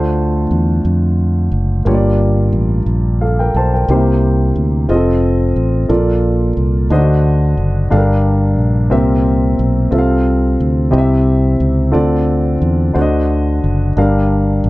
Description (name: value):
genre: slow gospel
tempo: 60 BPM (dotted quarters)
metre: 6/8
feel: straight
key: unclear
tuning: A4 = 440 Hz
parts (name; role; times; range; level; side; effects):
- warm concert grand piano; accompaniment; 0.0-14.7 s; G2 to A5; -15 LUFS; equal; none
- fingered electric bass; bass; 0.0-14.7 s; F1 to F2; -14 LUFS; equal; none
room: moderate small room reverb, RT60 0.5 s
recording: dark, warm production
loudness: -12 LUFS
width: side -19 dB against mid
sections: 0.0-14.7 A section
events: none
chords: 0.0 Dm7; 1.9 Gm7; 3.9 C7; 4.9 F7; 5.9 Bbmaj7; 6.9 D7b9; 7.9 Gm7; 8.9 C7; 9.9 F/C; 10.9 C; 11.9 Dm7; 13.0 D7b9; 14.0 Gm7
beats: 0.85 | 1.86 2.87 | 3.88 4.89 | 5.89 6.90 | 7.91 8.92 | 9.93 10.94 | 11.95 12.96 | 13.97